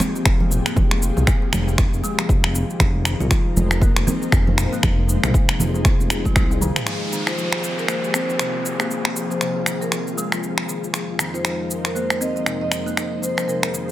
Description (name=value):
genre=afro house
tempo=118 BPM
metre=4/4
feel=swing 59% on 16ths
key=F minor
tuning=A4 = 436 Hz
part: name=ethereal airy pad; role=sustained chords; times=0.0-13.9 s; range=F2 to C5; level=-29 LUFS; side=left 1 dB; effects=ensemble chorus, built-in reverb, sidechain pumping
part: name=kalimba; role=arpeggios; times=0.0-13.9 s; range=C3 to F4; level=-27 LUFS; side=left 2 dB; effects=sidechain pumping, low-pass filter, dub echo
part: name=deep house drum kit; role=drums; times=0.0-13.9 s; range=cabasa, finger snaps, toms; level=-23 LUFS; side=equal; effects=studio reverb
part: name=congas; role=percussion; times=0.0-6.7 s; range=none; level=-26 LUFS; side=right 3 dB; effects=none
part: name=smooth synth bass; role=bass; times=0.3-6.7 s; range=F1 to C2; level=-22 LUFS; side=equal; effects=sidechain pumping
part: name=electronic kick drum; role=drums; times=0.3-6.5 s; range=none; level=-18 LUFS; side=equal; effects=studio reverb
part: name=downlifter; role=sound effects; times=6.9-10.9 s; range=none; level=-30 LUFS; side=equal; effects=none
part: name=marimba with hard mallets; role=melody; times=7.3-13.7 s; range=Bb4 to Eb5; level=-27 LUFS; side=right 1 dB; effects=dub echo
room=light reverb, digital ambience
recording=none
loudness=-18 LUFS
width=side -14 dB against mid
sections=0.0-6.9 A section; 6.9-13.9 B section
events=drum fill 6.5-6.9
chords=0.0 Fm; 2.8 Abadd9/F; 6.9 Fm; 10.9 Abadd9/F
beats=0.26 | 0.77 1.27 1.78 2.29 | 2.80 3.31 3.82 4.33 | 4.83 5.34 5.85 6.36 | 6.87 7.38 7.88 8.39 | 8.90 9.41 9.92 10.43 | 10.94 11.45 11.95 12.46 | 12.97 13.48